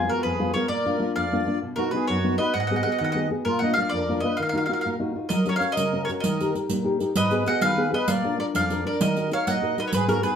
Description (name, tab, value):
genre	italian folk, Italian serenade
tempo	130 BPM (dotted quarters)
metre	6/8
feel	straight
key	Eb minor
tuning	A4 = 440 Hz
part	mandolin	melody	0.0-10.4 s	Bb4 to Gb5	-26 LUFS	left 1 dB	plate reverb
part	accordion	second line	0.0-10.4 s	F4 to Eb5	-30 LUFS	right 3 dB	light tremolo tuning
part	nylon-string guitar	accompaniment	0.0-10.4 s	F2 to Bb4	-25 LUFS	left 1 dB	none
part	riq	percussion	5.3-10.3 s	none	-27 LUFS	right 3 dB	none
room	wet studio reverb, RT60 0.6 s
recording	heard from further back in the room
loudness	-22 LUFS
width	side -8 dB against mid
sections	0.0-10.4 A section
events	none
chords	0.0 Fdim; 0.7 Bb; 1.6 B; 2.5 Abm7; 3.5 Bb; 4.4 Ebmadd9; 5.3 Gb; 6.2 Eb; 7.1 Abm7; 8.1 Bb; 9.0 Ebm